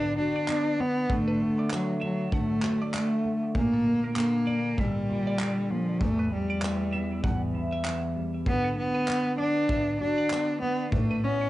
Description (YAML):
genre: acoustic pop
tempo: 98 BPM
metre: 4/4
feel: swing 60% on 16ths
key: unclear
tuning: A4 = 444 Hz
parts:
  - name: rich cello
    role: melody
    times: 0.0-11.5 s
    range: F3 to D4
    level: -27 LUFS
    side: equal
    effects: cassette tape, analog delay
  - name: nylon-string guitar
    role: accompaniment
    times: 0.0-11.5 s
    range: E2 to F#4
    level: -31 LUFS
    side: equal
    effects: double-tracked left and right
  - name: twelve-string electric guitar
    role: arpeggios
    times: 0.0-11.5 s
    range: A4 to F#5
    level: -40 LUFS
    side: right 2 dB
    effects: phaser, analog delay
  - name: loose indie drum kit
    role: drums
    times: 0.5-11.1 s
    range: handclaps, kick drum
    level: -32 LUFS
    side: equal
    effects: cassette tape
room: moderate studio reverb, RT60 0.6 s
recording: home recording on cassette, nothing above 10.7 kHz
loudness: -25 LUFS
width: side -16 dB against mid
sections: 0.0-11.5 A section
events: none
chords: 0.0 Bm/D; 3.5 Bb; 6.0 Em; 8.5 Bm/D; 10.9 Aadd9